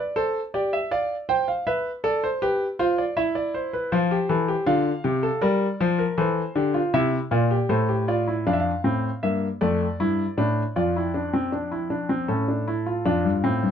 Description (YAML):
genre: classical, baroque-style 3-part fugue for grand piano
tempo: 79 BPM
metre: 3/4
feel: straight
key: F major, D minor from 8.5 s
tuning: A4 = 440 Hz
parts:
  - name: clear grand piano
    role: solo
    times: 0.0-13.7 s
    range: F2 to G5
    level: -21 LUFS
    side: left 1 dB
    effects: none
room: light reverb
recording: close, detailed microphones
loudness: -21 LUFS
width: side -8 dB against mid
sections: 0.0-8.5 A section; 8.5-13.1 B section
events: none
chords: 0.0 C; 0.9 Dm7; 1.7 G7; 3.2 C/E; 3.9 F; 5.4 Gm7; 6.2 C7; 7.7 F/A; 8.5 Dm/F; 10.0 Gsus2; 10.8 Dm/F; 12.3 A; 13.1 Dm/F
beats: 0.15 0.91 | 1.66 2.41 3.17 | 3.92 4.67 5.42 | 6.18 6.94 7.70 | 8.46 9.23 10.00 | 10.76 11.53 12.30 | 13.06